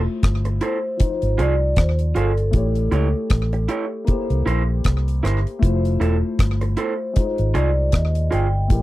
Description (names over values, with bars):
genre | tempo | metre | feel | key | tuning
lovers rock reggae | 78 BPM | 4/4 | swing 58% on 16ths | unclear | A4 = 444 Hz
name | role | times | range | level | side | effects
dark grand piano | accompaniment | 0.0-8.8 s | F3 to C#5 | -27 LUFS | left 4 dB | slapback echo
vintage muted fingered electric bass | bass | 0.0-8.8 s | E1 to Eb2 | -20 LUFS | equal | none
deep reggae drum kit | drums | 0.2-8.8 s | hi-hat, kick drum, rim click | -18 LUFS | equal | none
electric guitar through a small old amp | stabs | 0.5-8.5 s | E4 to C#5 | -24 LUFS | right 4 dB | none
vibraphone with soft mallets | melody | 0.7-8.8 s | A4 to G5 | -26 LUFS | equal | tape echo
room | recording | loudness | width
little or no reverb | dry, close 1970s-style studio recording | -18 LUFS | side -16 dB against mid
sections
0.0-8.8 A section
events
none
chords
0.0 Fmaj7; 1.0 Ab6; 2.5 A7; 4.1 C7; 5.6 Fmaj7; 7.2 Ab6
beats
0.24 1.01 1.77 | 2.54 3.31 4.08 4.85 | 5.62 6.39 7.16 7.93 | 8.70